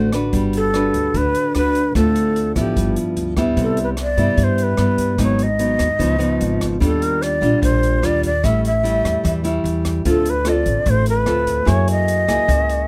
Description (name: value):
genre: bossa nova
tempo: 148 BPM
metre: 4/4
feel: straight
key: G major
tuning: A4 = 438 Hz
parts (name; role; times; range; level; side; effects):
- breathy shakuhachi; melody; 0.0-12.9 s; G4 to E5; -23 LUFS; equal; none
- nylon-string guitar; accompaniment; 0.0-12.9 s; G2 to B4; -22 LUFS; equal; none
- upright bass; bass; 0.0-12.9 s; G1 to G2; -24 LUFS; equal; none
- open jazz drum kit; drums; 0.1-12.8 s; hi-hat, kick drum, rim click; -29 LUFS; equal; none
room: little or no reverb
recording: close, detailed microphones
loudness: -18 LUFS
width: mono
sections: 0.0-3.6 A section; 3.6-12.9 B section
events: none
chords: 0.3 Gmaj7; 1.9 Dm7; 2.8 G6; 3.6 Cmaj7; 5.2 Abm7; 6.0 Db9; 6.8 Ebmaj9; 8.4 A7; 10.1 Dm7; 11.7 F#9